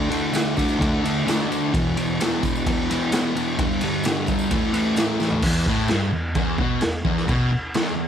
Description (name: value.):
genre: garage rock duo or trio.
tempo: 130 BPM.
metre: 4/4.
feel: straight.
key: unclear.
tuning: A4 = 440 Hz.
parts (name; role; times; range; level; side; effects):
fuzz guitar; riff; 0.0-8.1 s; E2 to D4; -22 LUFS; equal; distortion.
raw garage drum kit; drums; 0.1-7.9 s; crash cymbal, kick drum, ride cymbal, snare drum, toms; -24 LUFS; equal; none.
tambourine; percussion; 0.3-5.4 s; none; -41 LUFS; right 6 dB; none.
room: small room reverb.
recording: none.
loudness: -19 LUFS.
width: side -8 dB against mid.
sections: 0.0-5.4 A section; 5.4-8.1 B section.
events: drum fill 5.2.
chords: 0.0 D5; 1.7 E5; 3.6 G5; 4.5 A5; 5.4 E5.